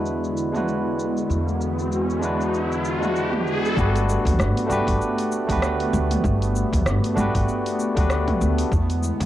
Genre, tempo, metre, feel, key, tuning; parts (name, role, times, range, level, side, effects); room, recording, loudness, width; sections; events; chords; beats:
sunset chillout; 97 BPM; 4/4; swing 57% on 16ths; A4 = 440 Hz
barky tine electric piano; accompaniment; 0.0-8.7 s; G#3 to B4; -25 LUFS; moving between left 4 dB and right 3 dB; auto-pan, analog delay
airy breathy pad; sustained chords; 0.0-9.3 s; D3 to F#4; -27 LUFS; equal; chorus
upright bass; bass; 0.0-9.3 s; G1 to E2; -24 LUFS; equal
riser; sound effects; 0.9-3.8 s; -30 LUFS; right 2 dB
deep house drum kit; drums; 0.1-9.3 s; hi-hat, rim click, shaker, toms; -30 LUFS; equal; low-pass filter on perc, cassette tape, low-pass filter on toms, low-pass filter on hats, low-pass filter on snare, low-pass filter on room
electronic kick drum; drums; 3.8-9.3 s; -26 LUFS; equal; cassette tape
light reverb, digital ambience; home recording on cassette; -20 LUFS; side -13 dB against mid
0.0-3.8 A section; 3.8-9.3 B section
riser 0.9-3.8
0.0 E7; 3.8 Gmaj9; 8.7 E7
0.06 0.68 | 1.29 1.91 2.53 3.15 | 3.77 4.39 5.01 5.62 | 6.24 6.86 7.48 8.10 | 8.72